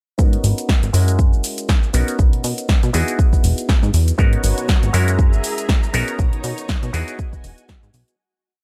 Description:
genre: filtered disco house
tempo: 120 BPM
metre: 4/4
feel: swing 56% on 16ths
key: unclear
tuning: A4 = 440 Hz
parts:
  - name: auto-wah clav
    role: accompaniment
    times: 0.2-8.1 s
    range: G#3 to A#4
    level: -28 LUFS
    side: equal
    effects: overdrive, phaser, sidechain pumping, low-pass filter
  - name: plucky analog bass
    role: bass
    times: 0.2-8.0 s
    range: E1 to B2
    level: -20 LUFS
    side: equal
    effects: sidechain pumping, low-pass filter
  - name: electronic kick drum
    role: drums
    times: 0.2-7.8 s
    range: none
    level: -18 LUFS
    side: equal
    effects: none
  - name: punchy analog drum machine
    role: drums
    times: 0.2-8.2 s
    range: hi-hat, shaker, snare drum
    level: -28 LUFS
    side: equal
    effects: overdrive, sidechain pumping on perc, sidechain pumping on hats
  - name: string machine, full ensemble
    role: sustained chords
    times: 4.2-8.2 s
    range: B3 to A#5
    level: -32 LUFS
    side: equal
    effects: ensemble chorus, sidechain pumping, low-pass filter
room: little or no reverb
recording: none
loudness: -18 LUFS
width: mono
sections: 0.2-8.2 groove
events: filter sweep 0.2-8.2; fade-out 5.5-8.2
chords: 0.2 G#m11; 0.9 F#9; 1.9 Bmaj9; 2.9 Emaj9; 4.2 G#m11; 4.9 F#9; 5.9 Bmaj9; 6.9 Emaj9

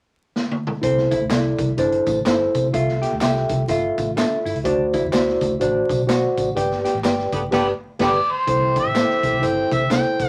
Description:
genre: uptempo 1960s-style soul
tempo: 126 BPM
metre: 4/4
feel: swing 59% on 8ths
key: C major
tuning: A4 = 439 Hz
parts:
  - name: raw garage drum kit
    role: drums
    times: 0.4-10.3 s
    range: crash cymbal, hi-hat, kick drum, snare drum, toms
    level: -27 LUFS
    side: equal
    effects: none
  - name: mellow tine electric piano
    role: accompaniment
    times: 0.8-10.3 s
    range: D4 to E5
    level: -23 LUFS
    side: equal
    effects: none
  - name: vintage hollow-body jazz guitar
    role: riff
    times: 0.8-7.5 s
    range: C4 to G4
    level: -30 LUFS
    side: equal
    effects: none
  - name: vintage muted fingered electric bass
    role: bass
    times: 0.8-10.3 s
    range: G1 to C3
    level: -29 LUFS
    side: equal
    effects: none
  - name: tambourine and handclaps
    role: percussion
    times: 0.8-10.3 s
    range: none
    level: -37 LUFS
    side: equal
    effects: none
  - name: warm horn section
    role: second line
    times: 7.3-10.2 s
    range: D3 to G4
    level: -29 LUFS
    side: equal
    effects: none
  - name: overdriven harmonica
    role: melody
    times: 8.0-10.3 s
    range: G4 to G5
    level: -24 LUFS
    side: equal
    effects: none
room: moderate club reverb, RT60 0.6 s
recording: vinyl crackle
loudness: -20 LUFS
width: mono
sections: 0.8-8.5 A section; 8.5-10.3 B section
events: drum fill 0.4-0.8; band accent 6.6-8.5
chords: 0.0 N.C.; 0.8 C6; 2.7 Fmaj7/C; 4.7 D7; 6.6 G; 8.5 C6

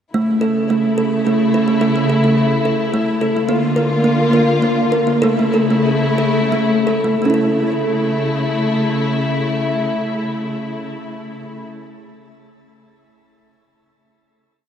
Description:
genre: world meditative, meditative tuned percussion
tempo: 80-108 BPM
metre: 3/4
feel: straight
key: unclear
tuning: A4 = 441 Hz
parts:
  - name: warm studio string section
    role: sustained chords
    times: 0.1-11.7 s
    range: C#3 to F4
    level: -18 LUFS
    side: left 2 dB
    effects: shimmer reverb
  - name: kalimba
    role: arpeggios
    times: 0.1-11.8 s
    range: A3 to Bb4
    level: -17 LUFS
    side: right 1 dB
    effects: diffuse ambient delay, shimmer reverb
room: wet lush hall reverb, RT60 2.6 s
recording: dreamy mix soaked in reverb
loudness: -14 LUFS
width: side -8 dB against mid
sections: 0.1-7.2 A section; 7.2-11.7 final chord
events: slowing down 3.5-7.2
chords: 0.1 A; 3.5 Bb; 5.2 A

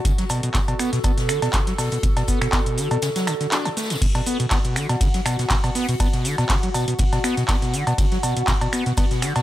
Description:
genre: acid house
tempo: 121 BPM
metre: 4/4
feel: swing 54% on 16ths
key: B minor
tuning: A4 = 441 Hz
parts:
  - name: warbly tape-like pad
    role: sustained chords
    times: 0.0-9.4 s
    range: F#4 to F#5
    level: -29 LUFS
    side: equal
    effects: chorus, built-in reverb, phaser, sidechain pumping
  - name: electronic kick drum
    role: drums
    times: 0.0-9.1 s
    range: none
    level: -22 LUFS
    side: equal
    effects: none
  - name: overdriven acid bass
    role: riff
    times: 0.1-9.4 s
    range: A2 to D4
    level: -24 LUFS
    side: equal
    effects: wide subtle chorus, sidechain pumping
  - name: electro analog drum machine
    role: drums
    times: 0.1-9.4 s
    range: cabasa, cowbell, crash cymbal, finger snaps, handclaps, hi-hat, ride cymbal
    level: -25 LUFS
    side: equal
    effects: none
  - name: swinging big-band drum kit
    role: drums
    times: 0.1-9.4 s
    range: hi-hat, snare drum, tambourine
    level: -36 LUFS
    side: left 1 dB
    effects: none
room: small room reverb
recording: none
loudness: -19 LUFS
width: side -14 dB against mid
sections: 0.0-9.4 A section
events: break 3.0-4.0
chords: 0.0 B5

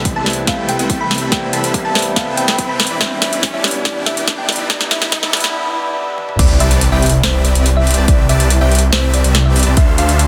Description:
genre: future bass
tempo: 142 BPM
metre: 4/4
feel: half-time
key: unclear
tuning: A4 = 439 Hz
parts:
  - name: thumb-piano-like synth pluck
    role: melody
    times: 0.0-10.2 s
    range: C5 to B5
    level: -25 LUFS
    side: equal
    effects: chorus, phaser, cassette tape, sidechain pumping, dub echo
  - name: barky tine electric piano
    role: accompaniment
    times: 0.0-6.4 s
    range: G3 to B4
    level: -26 LUFS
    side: equal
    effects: overdrive, phaser, sidechain pumping, dub echo
  - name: airy breathy pad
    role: sustained chords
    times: 0.0-5.5 s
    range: C3 to G4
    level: -35 LUFS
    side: equal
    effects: none
  - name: supersaw chords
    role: riff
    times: 0.0-10.2 s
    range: E3 to B5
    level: -24 LUFS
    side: equal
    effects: sidechain pumping, low-pass filter
  - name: detuned saw bass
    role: bass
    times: 0.0-10.3 s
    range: E1 to D2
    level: -18 LUFS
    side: equal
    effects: chorus, sidechain pumping
  - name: riser and sub drop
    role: sound effects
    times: 0.0-8.1 s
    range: none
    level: -27 LUFS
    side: equal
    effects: none
  - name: electronic kick drum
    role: drums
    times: 0.1-9.9 s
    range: none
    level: -18 LUFS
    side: equal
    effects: none
  - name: trap drum kit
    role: drums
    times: 0.1-10.3 s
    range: crash cymbal, hi-hat, snare drum, toms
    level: -20 LUFS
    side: equal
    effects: overdrive
room: light reverb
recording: dense, heavily limited modern master, high-pass filter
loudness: -15 LUFS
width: mono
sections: 0.0-6.4 A section; 6.4-10.3 B section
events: build-up 0.0-6.4; drum fill 0.0-5.5, 6.2; riser 0.0-5.5; break 5.5-6.4; drop 6.4-10.3; impact 6.4-8.1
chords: 0.0 Am7/C; 2.8 Em7; 6.4 Cmaj9; 9.8 Dm9

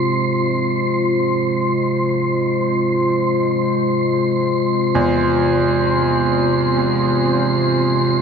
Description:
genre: dark ambient drone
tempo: free time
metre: none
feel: none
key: F harmonic minor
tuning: A4 = 440 Hz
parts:
  - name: dark analog pad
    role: sustained chords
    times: 0.0-8.2 s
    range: Ab3 to C5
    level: -18 LUFS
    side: left 2 dB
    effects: wide subtle chorus
  - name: bright concert grand piano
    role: arpeggios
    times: 0.0-8.2 s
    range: E2 to C3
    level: -22 LUFS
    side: right 3 dB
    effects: diffuse ambient delay
  - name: deep rumbling drone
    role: drone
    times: 0.0-8.2 s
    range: C3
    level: -22 LUFS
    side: right 5 dB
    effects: built-in reverb
  - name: wind-like tuned noise texture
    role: texture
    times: 0.0-8.2 s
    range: C6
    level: -23 LUFS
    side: right 1 dB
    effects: built-in reverb
room: wet huge ambient reverb, RT60 7.7 s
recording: none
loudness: -15 LUFS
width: side -6 dB against mid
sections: 0.0-8.2 A section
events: none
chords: 0.0 Fm

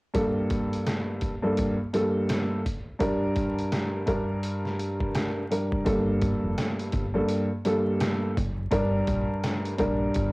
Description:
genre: hip hop, boom-bap hip-hop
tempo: 84 BPM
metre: 4/4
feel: swing 59% on 16ths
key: G minor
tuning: A4 = 440 Hz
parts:
  - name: dark upright piano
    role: accompaniment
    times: 0.1-10.3 s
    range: G2 to Bb4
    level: -25 LUFS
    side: equal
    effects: cassette tape
  - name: trip hop sampler-style drum kit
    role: drums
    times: 0.1-10.3 s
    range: hi-hat, kick drum, rim click, snare drum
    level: -31 LUFS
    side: equal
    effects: cassette tape
  - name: deep dub fingered electric bass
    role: bass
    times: 5.9-10.3 s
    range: F1 to Bb1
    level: -30 LUFS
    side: equal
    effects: transformer saturation
room: little or no reverb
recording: home recording on cassette, vinyl crackle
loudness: -24 LUFS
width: side -23 dB against mid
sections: 0.1-5.9 A section; 5.9-10.3 B section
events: none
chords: 0.1 Gmadd9; 3.0 Gm; 5.9 Gmadd9; 8.7 Gm

